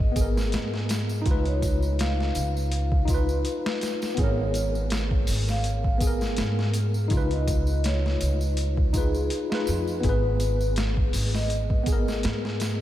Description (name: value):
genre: trip hop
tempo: 82 BPM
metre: 4/4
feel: swing 55% on 16ths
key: G# dorian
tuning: A4 = 440 Hz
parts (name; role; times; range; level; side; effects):
- vibraphone with soft mallets; melody; 0.0-11.8 s; G#4 to E#5; -33 LUFS; left 1 dB; tape echo
- tine electric piano; accompaniment; 0.0-12.8 s; B3 to B4; -30 LUFS; left 1 dB; overdrive, medium stereo tremolo, harmonic tremolo, vintage 12-bit sampler grit, tape echo
- upright bass; bass; 0.0-12.8 s; G#1 to G#2; -26 LUFS; equal; none
- boom bap sampler-style drum kit; drums; 0.0-12.8 s; hi-hat, kick drum, snare drum; -27 LUFS; equal; overdrive
- tambourine; percussion; 0.2-12.8 s; none; -42 LUFS; right 1 dB; none
room: light reverb, small room reverb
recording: none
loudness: -22 LUFS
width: side -13 dB against mid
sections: 0.0-12.8 A section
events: none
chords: 0.0 G#madd9; 1.3 C#7; 4.2 G#madd9; 7.1 C#7; 10.0 G#madd9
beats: 0.53 | 1.26 1.99 2.73 3.46 | 4.19 4.92 5.65 6.38 | 7.12 7.85 8.58 9.31 | 10.04 10.78 11.51 12.24